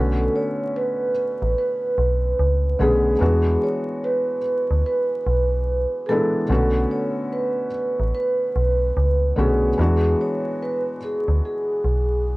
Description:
hip hop; 73 BPM; 4/4; swing 64% on 16ths; B dorian; A4 = 443 Hz
vibraphone with soft mallets; melody; 0.0-12.2 s; G#4 to C#5; -22 LUFS; right 1 dB; plate reverb
felt-muted upright piano; accompaniment; 0.0-12.4 s; D3 to G#4; -26 LUFS; left 1 dB; plate reverb
metallic FM bass; bass; 0.0-12.4 s; A1 to E2; -20 LUFS; equal
moderate studio ambience, RT60 0.5 s; worn, warbling old tape, cassette tape, vinyl crackle, warbly pitch drift; -19 LUFS; side -20 dB against mid
0.0-12.4 A section
0.0 Bm9; 3.2 E9; 6.5 Bm9; 9.8 E9
0.74 1.56 2.39 | 3.21 4.03 4.85 5.67 | 6.50 7.32 8.14 8.96 | 9.78 10.61 11.43 12.25

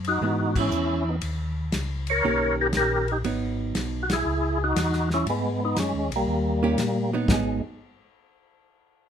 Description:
soul jazz organ trio; 119 BPM; 4/4; swing 69% on 8ths; G# minor; A4 = 440 Hz
mellow tonewheel organ; bass; 0.0-7.6 s; G#1 to A#2; -28 LUFS; left 1 dB; chorus vibrato, slow rotary speaker
warm soul drum kit; drums; 0.0-7.4 s; crash cymbal, hi-hat, kick drum, ride cymbal, snare drum; -30 LUFS; left 1 dB
percussive tonewheel organ; melody; 0.1-7.6 s; G3 to C#5; -24 LUFS; equal; slow rotary speaker, overdrive, chorus vibrato
hollow-body jazz guitar; accompaniment; 0.2-7.6 s; D#3 to G4; -28 LUFS; right 6 dB
moderate large studio reverb, RT60 0.9 s; minimal, uncompressed stereo recording; -22 LUFS; side -8 dB against mid
0.0-7.3 A section; 7.3-9.1 B section
band accent 0.5, 4.0
0.0 Emaj7; 1.2 D#7; 3.2 G#m7; 4.3 C#m; 5.3 G#m7; 6.3 D#7; 7.3 G#m7
0.21 0.71 | 1.22 1.73 2.23 2.74 | 3.24 3.75 4.25 4.76 | 5.26 5.77 6.27 6.78 | 7.28

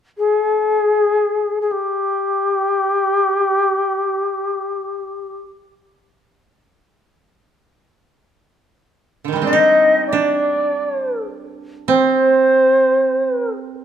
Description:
japanese traditional, Japanese chamber music; free time; G miyako bushi; A4 = 440 Hz
bright reedy long shakuhachi; melody; 0.2-13.5 s; G4 to Eb5; -15 LUFS; left 1 dB
koto; second line; 9.2-13.8 s; D3 to Eb4; -21 LUFS; right 8 dB
moderate recital hall reverb, RT60 1.5 s; -15 LUFS; side -8 dB against mid
0.0-9.5 A section; 9.5-13.8 B section
free time

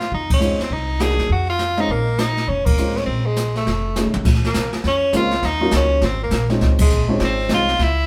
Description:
jazz, small-group swing and bop; 203 BPM; 4/4; swing 62% on 8ths; Bb minor; A4 = 441 Hz
edgy tenor saxophone; melody; 0.0-8.1 s; Ab3 to Ab4; -23 LUFS; equal
upright bass; bass; 0.0-8.1 s; F1 to Gb2; -24 LUFS; equal
jazz brush drum kit; drums; 0.0-8.1 s; brushed snare drum, crash cymbal, hi-hat, kick drum, ride cymbal, snare drum, toms; -24 LUFS; equal
dark baby grand piano; accompaniment; 0.4-7.7 s; F3 to G#4; -25 LUFS; equal
moderate studio reverb, RT60 0.8 s; band playing live in one room; -19 LUFS; mono
0.0-4.2 A section; 4.2-8.1 B section
band accent 0.3, 2.6, 6.8; drum fill 3.7-4.2
0.0 Dbmaj7; 0.7 Cm7b5; 1.3 F5; 1.9 Bbm9; 3.7 F7alt; 4.2 Bbm9; 5.4 Ebm7; 6.0 Abadd9
0.12 0.41 | 0.71 1.00 1.30 1.59 | 1.89 2.18 2.48 2.77 | 3.07 3.36 3.66 3.95 | 4.25 4.54 4.84 5.13 | 5.43 5.72 6.02 6.32 | 6.61 6.91 7.20 7.50 | 7.79

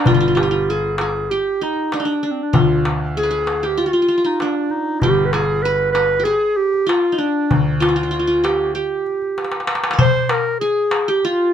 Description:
Arabic maqam ensemble; 97 BPM; 4/4; straight; G maqam hijaz; A4 = 440 Hz
warm clarinet; melody; 0.0-11.5 s; C4 to C5; -18 LUFS; equal
qanun; second line; 0.0-11.5 s; D4 to D5-50c; -23 LUFS; right 1 dB
clear grand piano; bass; 0.0-8.7 s; G1 to D2; -22 LUFS; equal
darbuka; percussion; 0.1-11.3 s; -19 LUFS; left 3 dB
light reverb; minimal, uncompressed stereo recording; -16 LUFS; side -9 dB against mid
0.0-10.0 A section; 10.0-11.5 B section
drum fill 9.4-10.0
| 0.05 0.67 1.29 1.91 | 2.54 3.16 3.78 4.40 | 5.02 5.64 6.26 6.88 | 7.50 8.12 8.74 9.37 | 9.99 10.61 11.23

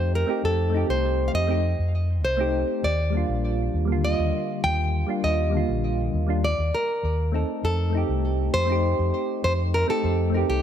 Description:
sunset chillout; 100 BPM; 4/4; straight; A4 = 440 Hz
nylon-string guitar; melody; 0.0-10.6 s; G4 to G5; -26 LUFS; left 1 dB; tape echo
soft electric-piano-like synth keys; accompaniment; 0.0-10.6 s; D3 to A4; -27 LUFS; moving between left 2 dB and right 4 dB; chorus, auto-pan
fingered electric bass; bass; 0.0-10.6 s; Bb1 to F2; -24 LUFS; equal
light reverb, small room ambience; -21 LUFS; side -9 dB against mid
0.0-10.6 A section
0.0 F7; 2.8 Ebmaj7; 7.6 F7
| 0.43 1.03 1.63 2.23 | 2.83 3.43 4.03 4.63 | 5.23 5.83 6.43 7.03 | 7.63 8.23 8.83 9.43 | 10.03

